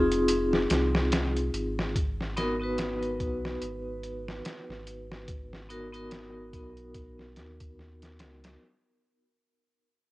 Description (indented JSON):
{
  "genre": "trip hop",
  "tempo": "72 BPM",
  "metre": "4/4",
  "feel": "swing 58% on 16ths",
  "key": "unclear",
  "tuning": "A4 = 440 Hz",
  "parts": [
    { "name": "vibraphone with hard mallets", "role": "accompaniment", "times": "0.0-8.6 s", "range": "Cb4 to Cb5", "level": "-30 LUFS", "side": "left 1 dB", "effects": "tremolo, low-pass filter, cassette tape, tape echo" },
    { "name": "warm sub bass", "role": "bass", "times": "0.0-8.6 s", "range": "F1 to Eb2", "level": "-36 LUFS", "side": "equal", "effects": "tube saturation" },
    { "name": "trip hop sampler-style drum kit", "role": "drums", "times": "0.1-8.6 s", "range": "hi-hat, kick drum, snare drum", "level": "-32 LUFS", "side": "equal", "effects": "cassette tape" }
  ],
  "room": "light reverb",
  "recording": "home recording on cassette",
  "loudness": "-27 LUFS",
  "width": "side -19 dB against mid",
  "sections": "0.0-8.6 A section",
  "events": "fade-out 0.0-8.6",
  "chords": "0.0 Fm7; 1.9 Abm7",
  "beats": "0.28 1.11 | 1.95 2.78 3.61 4.45 | 5.28 6.11 6.95 7.78"
}